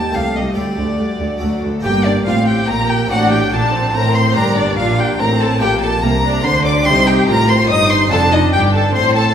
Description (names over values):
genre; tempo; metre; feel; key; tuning
classical, baroque-style concerto movement with solo episodes; 143 BPM; 3/4; straight; G minor; A4 = 440 Hz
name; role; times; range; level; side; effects
rich studio violin section; melody; 0.0-9.3 s; F#4 to Eb6; -22 LUFS; left 4 dB; none
rich violin; melody; 0.0-9.3 s; D5 to Eb6; -19 LUFS; equal; none
harpsichord; accompaniment; 0.0-9.3 s; C2 to A4; -23 LUFS; equal; none
rich chamber viola section; accompaniment; 0.0-9.3 s; F#3 to F4; -21 LUFS; right 2 dB; none
warm studio violin section; second line; 0.1-9.3 s; D4 to F5; -21 LUFS; left 2 dB; none
rich chamber cello section; bass; 0.1-9.3 s; C2 to D3; -19 LUFS; right 1 dB; none
rich chamber double bass section; bass; 1.9-9.3 s; F1 to D2; -20 LUFS; right 2 dB; none
room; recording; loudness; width
wet recital hall reverb, RT60 1.4 s; heard from further back in the room; -12 LUFS; side -8 dB against mid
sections
0.0-1.8 A section; 1.8-9.3 B section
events
none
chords
0.1 Am7b5/C; 0.6 Dsus4; 1.4 D; 1.8 Gm; 3.1 D7/A; 4.4 Gm; 5.6 Gm/Bb; 6.9 Cm; 8.1 F7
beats
0.15 | 0.57 1.00 1.42 | 1.84 2.27 2.68 | 3.10 3.52 3.94 | 4.36 4.78 5.20 | 5.61 6.03 6.45 | 6.86 7.28 7.70 | 8.11 8.53 8.95